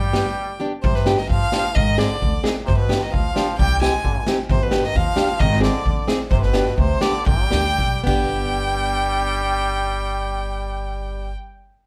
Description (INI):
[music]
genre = klezmer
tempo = 98-131 BPM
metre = 2/4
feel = straight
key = G phrygian dominant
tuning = A4 = 440 Hz
[part]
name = clear violin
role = melody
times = 0.0-11.3 s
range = B4 to Ab5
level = -27 LUFS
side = equal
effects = slapback echo
[part]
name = brilliant trombone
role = second line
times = 0.0-11.3 s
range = B2 to Ab3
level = -30 LUFS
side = equal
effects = slapback echo
[part]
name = upright bass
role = bass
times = 0.0-11.3 s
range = G1 to Ab2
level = -25 LUFS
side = equal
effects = none
[part]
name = nylon-string guitar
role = accompaniment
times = 0.1-11.3 s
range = B3 to Ab4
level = -26 LUFS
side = equal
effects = slapback echo
[part]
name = street-band drum kit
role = drums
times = 0.1-8.2 s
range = crash cymbal, kick drum, snare drum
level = -25 LUFS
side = equal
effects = none
[sound]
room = light reverb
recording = live gig heard through the venue's PA, club reverb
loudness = -20 LUFS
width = mono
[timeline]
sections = 0.8-8.4 A section; 8.4-10.8 B section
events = break 0.4-0.8; slowing down 6.3-8.4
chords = 0.0 G; 1.7 Ab; 2.7 G; 3.6 Cm; 4.5 G; 5.4 Ab; 6.3 G